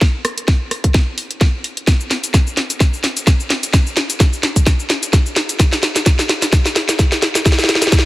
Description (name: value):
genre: bass house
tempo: 129 BPM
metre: 4/4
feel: swing 55% on 16ths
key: none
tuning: none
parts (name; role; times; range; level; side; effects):
- electronic kick drum; drums; 0.0-8.0 s; none; -13 LUFS; equal; none
- garage drum kit; drums; 0.0-8.1 s; cabasa, hi-hat, rim click, snare drum; -16 LUFS; equal; none
room: light reverb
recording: heavily compressed radio sound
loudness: -13 LUFS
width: side -17 dB against mid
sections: 0.0-8.1 A section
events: build-up 0.0-8.1; drum fill 0.0-8.1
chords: none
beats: | 0.01 0.48 0.94 1.41 | 1.88 2.34 2.81 3.27 | 3.73 4.20 4.67 5.13 | 5.60 6.06 6.53 6.99 | 7.46 7.92